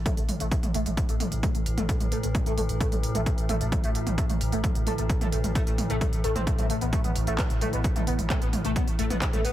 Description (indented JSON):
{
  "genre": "driving peak-time techno",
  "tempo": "131 BPM",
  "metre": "4/4",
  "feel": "straight",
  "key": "unclear",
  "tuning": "A4 = 440 Hz",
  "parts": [
    { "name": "saturated sub bass", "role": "bass", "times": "0.0-9.4 s", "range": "A1", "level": "-31 LUFS", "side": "equal", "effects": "overdrive, sidechain pumping, low-pass filter" },
    { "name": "metallic inharmonic drone", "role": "drone", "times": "0.5-9.5 s", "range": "A2 to E3", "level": "-34 LUFS", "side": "equal", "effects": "chorus, built-in reverb, sidechain pumping" },
    { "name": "overdriven synth lead", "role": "riff", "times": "0.1-9.5 s", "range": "A3 to C4", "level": "-32 LUFS", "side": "equal", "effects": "phaser, tube saturation, ensemble chorus, sidechain pumping, dub echo" },
    { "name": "electronic kick drum", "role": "drums", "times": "0.1-9.3 s", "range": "none", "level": "-26 LUFS", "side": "equal", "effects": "none" },
    { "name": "techno drum kit", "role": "drums", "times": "0.1-9.5 s", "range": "handclaps, hi-hat, toms", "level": "-32 LUFS", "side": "right 1 dB", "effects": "none" }
  ],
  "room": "digital ambience",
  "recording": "heavily compressed radio sound",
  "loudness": "-24 LUFS",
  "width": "side -13 dB against mid",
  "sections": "0.0-9.5 A section",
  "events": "filter sweep on analog synth lead 0.0-9.5",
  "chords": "0.0 A5",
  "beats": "0.06 0.52 0.97 | 1.43 1.89 2.35 2.81 | 3.26 3.72 4.18 4.64 | 5.09 5.55 6.01 6.47 | 6.93 7.38 7.84 8.30 | 8.76 9.22"
}